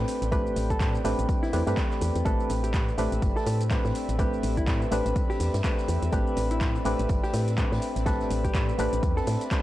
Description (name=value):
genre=deep house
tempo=124 BPM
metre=4/4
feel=swing 58% on 16ths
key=A minor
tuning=A4 = 439 Hz
part: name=airy breathy pad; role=sustained chords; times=0.0-9.6 s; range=C4 to G5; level=-37 LUFS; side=left 2 dB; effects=chorus, sidechain pumping
part: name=percussive organ stab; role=stabs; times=0.0-9.6 s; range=A3 to B4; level=-30 LUFS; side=equal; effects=chorus, sidechain pumping
part: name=woody FM bass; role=bass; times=0.0-9.4 s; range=G1 to A2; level=-28 LUFS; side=equal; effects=sidechain pumping
part: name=deep house drum kit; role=drums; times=0.1-9.6 s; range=handclaps, hi-hat, shaker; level=-37 LUFS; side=equal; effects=overdrive, vintage 12-bit sampler grit, small room ambience
part: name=open jazz drum kit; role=drums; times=0.1-9.6 s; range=hi-hat, snare drum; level=-50 LUFS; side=right 1 dB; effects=none
part: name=hollow-body jazz guitar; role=melody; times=0.3-9.4 s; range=E4 to B4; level=-35 LUFS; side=equal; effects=tape echo
part: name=electronic kick drum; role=drums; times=0.3-9.6 s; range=none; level=-28 LUFS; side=equal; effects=overdrive, vintage 12-bit sampler grit, small room ambience
room=digital ambience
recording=dry, gritty hardware recording, transformer saturation, faint mains hum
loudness=-24 LUFS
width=side -15 dB against mid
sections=0.0-9.6 A section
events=none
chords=0.0 Am11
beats=| 0.32 0.81 1.29 1.77 | 2.26 2.74 3.22 3.71 | 4.19 4.68 5.16 5.64 | 6.13 6.61 7.09 7.58 | 8.06 8.55 9.03 9.51